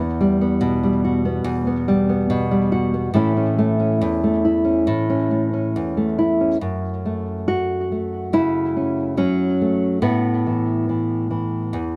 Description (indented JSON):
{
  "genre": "folk, solo fingerstyle acoustic guitar",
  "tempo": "70 BPM",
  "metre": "4/4",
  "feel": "straight",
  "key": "unclear",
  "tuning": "A4 = 439 Hz",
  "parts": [
    { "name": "nylon-string guitar", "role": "solo", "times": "0.0-12.0 s", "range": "E2 to F#4", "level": "-20 LUFS", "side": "equal", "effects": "tape echo" }
  ],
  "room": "light reverb",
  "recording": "close, detailed microphones",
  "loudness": "-20 LUFS",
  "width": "mono",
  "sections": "0.0-6.6 A section; 6.6-12.0 B section",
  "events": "none",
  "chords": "0.0 Emadd9; 3.2 A; 6.6 F#m7; 10.0 Asus2",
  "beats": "0.61 1.46 2.31 | 3.16 4.02 4.88 5.74 | 6.61 7.47 8.33 9.19 | 10.04 10.88 11.73"
}